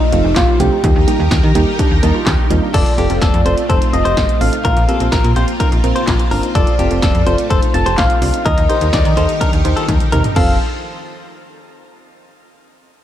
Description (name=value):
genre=synth-pop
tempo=126 BPM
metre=4/4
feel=straight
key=F mixolydian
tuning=A4 = 439 Hz
part: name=soft struck synth lead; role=melody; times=0.0-10.6 s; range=Eb4 to A5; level=-20 LUFS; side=left 1 dB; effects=chorus, tape echo, shimmer reverb
part: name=string machine, full ensemble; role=sustained chords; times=0.0-10.6 s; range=Eb3 to C5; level=-23 LUFS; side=equal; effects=ensemble chorus, shimmer reverb
part: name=warbly dusty pluck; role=arpeggios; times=0.0-10.6 s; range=C4 to A4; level=-26 LUFS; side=right 1 dB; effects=chorus, tape echo, shimmer reverb
part: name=soft electric-piano-like synth keys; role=accompaniment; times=0.1-10.6 s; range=F3 to A5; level=-22 LUFS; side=right 3 dB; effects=chorus, shimmer reverb
part: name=slap-like FM bass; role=bass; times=0.1-10.6 s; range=F1 to Eb3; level=-17 LUFS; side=equal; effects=none
part: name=punchy analog drum machine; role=drums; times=0.1-10.5 s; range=crash cymbal, handclaps, hi-hat, kick drum, snare drum, toms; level=-16 LUFS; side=equal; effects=none
part: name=direct-recorded clean electric guitar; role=second line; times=2.7-10.6 s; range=G4 to D5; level=-22 LUFS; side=left 4 dB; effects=tape echo, shimmer reverb
room=light reverb, digital ambience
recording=dark, warm production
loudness=-12 LUFS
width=side -11 dB against mid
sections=0.0-2.7 A section; 2.7-10.4 B section; 10.4-12.3 C section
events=synth keys fill 1.8-2.7; drum fill 9.9-10.4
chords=0.0 F; 0.8 Eb; 2.7 F; 4.6 Bbsus2; 6.6 F; 8.5 Eb; 10.4 F